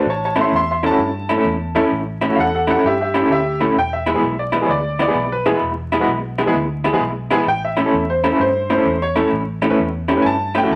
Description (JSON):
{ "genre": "blues", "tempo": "130 BPM", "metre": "4/4", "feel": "swing 67% on 8ths", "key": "unclear", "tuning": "A4 = 440 Hz", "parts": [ { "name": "clear upright piano", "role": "accompaniment", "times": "0.0-10.8 s", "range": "G#3 to C6", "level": "-21 LUFS", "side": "equal", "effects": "none" }, { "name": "electric guitar through a small old amp", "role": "riff", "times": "0.0-10.8 s", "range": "A2 to E4", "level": "-22 LUFS", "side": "equal", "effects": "tremolo" }, { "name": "vintage muted fingered electric bass", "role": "bass", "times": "0.1-10.8 s", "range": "E1 to G2", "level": "-29 LUFS", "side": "equal", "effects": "none" } ], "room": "light reverb", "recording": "vinyl crackle", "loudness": "-18 LUFS", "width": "mono", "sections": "0.0-10.8 A section", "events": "none", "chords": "0.1 A; 3.8 E; 7.5 A", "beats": "| 0.05 0.52 0.98 1.44 | 1.91 2.37 2.83 3.29 | 3.76 4.22 4.68 5.15 | 5.61 6.07 6.54 7.00 | 7.46 7.93 8.39 8.85 | 9.32 9.78 10.24 10.71" }